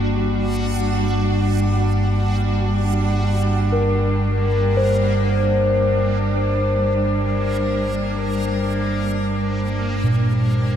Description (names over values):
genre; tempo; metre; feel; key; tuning
ambient; free time; none; none; G harmonic minor; A4 = 444 Hz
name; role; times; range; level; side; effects
warm studio cello section; sustained chords; 0.0-10.8 s; G3 to D4; -24 LUFS; right 1 dB; none
bronze singing bowl; arpeggios; 0.0-10.8 s; Bb2 to C5; -23 LUFS; left 2 dB; tape echo
deep rumbling drone; drone; 0.0-10.8 s; G1 to G2; -21 LUFS; equal; built-in reverb, lush chorus
backwards swelling texture; texture; 0.0-10.8 s; Bb3 to F#4; -29 LUFS; right 2 dB; built-in reverb
room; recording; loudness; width
wet cathedral reverb, RT60 6.3 s; in a vast, echoing space; -17 LUFS; side -9 dB against mid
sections
0.0-10.8 A section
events
fade-out 8.8-10.8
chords
0.0 G5